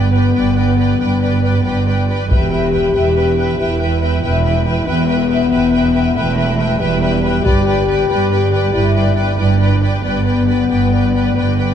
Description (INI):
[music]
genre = cinematic, epic orchestral film score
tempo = 93 BPM (dotted quarters)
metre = 12/8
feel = straight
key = unclear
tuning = A4 = 440 Hz
[part]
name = rich symphonic violin section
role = melody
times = 0.0-11.7 s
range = G5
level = -27 LUFS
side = left 1 dB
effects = none
[part]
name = warm symphonic violin section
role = second line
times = 0.0-11.7 s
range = D5 to E5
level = -26 LUFS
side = left 2 dB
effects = none
[part]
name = rich symphonic viola section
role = accompaniment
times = 0.0-11.7 s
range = B4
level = -24 LUFS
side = right 1 dB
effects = none
[part]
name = mellow French horn section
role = sustained chords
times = 0.0-11.7 s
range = G3 to G4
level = -17 LUFS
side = left 6 dB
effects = none
[part]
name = rich symphonic double bass section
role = bass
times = 0.0-11.7 s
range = E1 to G1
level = -18 LUFS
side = right 4 dB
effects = none
[part]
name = warm chamber cello section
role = bass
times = 0.0-11.7 s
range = E2 to G2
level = -20 LUFS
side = right 4 dB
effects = none
[part]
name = taiko ensemble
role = drums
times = 2.3-3.1, 7.5-8.3 s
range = none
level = -18 LUFS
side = equal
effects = none
[sound]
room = wet recital hall reverb, RT60 1.6 s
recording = dark, warm production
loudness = -12 LUFS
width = side -9 dB against mid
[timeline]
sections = 0.0-11.7 A section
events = none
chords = 0.0 G; 2.3 Em; 7.5 G